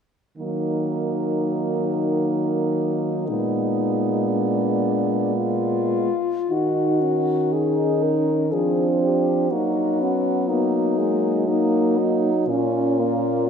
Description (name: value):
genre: classical, lyrical piece for horn quartet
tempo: 50-64 BPM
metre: 3/4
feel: rubato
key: Eb minor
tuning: A4 = 439 Hz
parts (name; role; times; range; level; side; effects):
- warm French horn; melody; 0.4-13.5 s; D4 to Bb4; -24 LUFS; left 6 dB; none
- warm French horn; second line; 0.4-13.5 s; Ab3 to Eb4; -26 LUFS; right 6 dB; none
- dark French horn; accompaniment; 0.4-13.5 s; Gb3 to Eb4; -26 LUFS; left 2 dB; none
- warm French horn; bass; 0.4-13.5 s; Bb2 to Gb3; -25 LUFS; right 3 dB; none
room: moderate concert hall reverb, RT60 2.2 s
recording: minimal, uncompressed stereo recording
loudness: -19 LUFS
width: side -7 dB against mid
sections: 0.4-6.5 A section; 6.5-13.5 B section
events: none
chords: 0.4 Ebm; 3.3 Bb7b9; 6.5 Ebm; 8.5 Ddim/F; 9.5 Ebm/Gb; 12.5 Bbm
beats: | 0.38 1.38 2.35 | 3.30 4.28 5.36 | 6.50 7.52 8.52 | 9.52 10.49 11.47 | 12.48 13.47